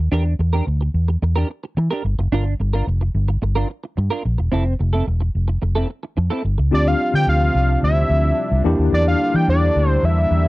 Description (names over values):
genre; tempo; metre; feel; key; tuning
funk; 109 BPM; 4/4; straight; D minor; A4 = 440 Hz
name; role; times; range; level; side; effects
clean electric guitar; riff; 0.0-6.6 s; C4 to Bb4; -23 LUFS; right 3 dB; analog chorus
vintage muted fingered electric bass; bass; 0.0-10.5 s; E1 to E3; -18 LUFS; equal; none
fat analog lead; melody; 6.7-10.5 s; D5 to G5; -20 LUFS; equal; slapback echo
mellow tine electric piano; accompaniment; 6.7-10.5 s; Bb3 to G4; -23 LUFS; left 3 dB; medium stereo tremolo
warm analog pad; sustained chords; 6.7-10.5 s; C3 to D4; -26 LUFS; equal; chorus
room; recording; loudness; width
little or no reverb; dry, close 1970s-style studio recording; -16 LUFS; side -19 dB against mid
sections
0.0-6.7 A section; 6.7-10.5 B section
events
none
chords
0.0 Em7b5; 2.0 Gm7; 4.5 Fmaj7; 6.7 Dm11; 8.7 Em7b5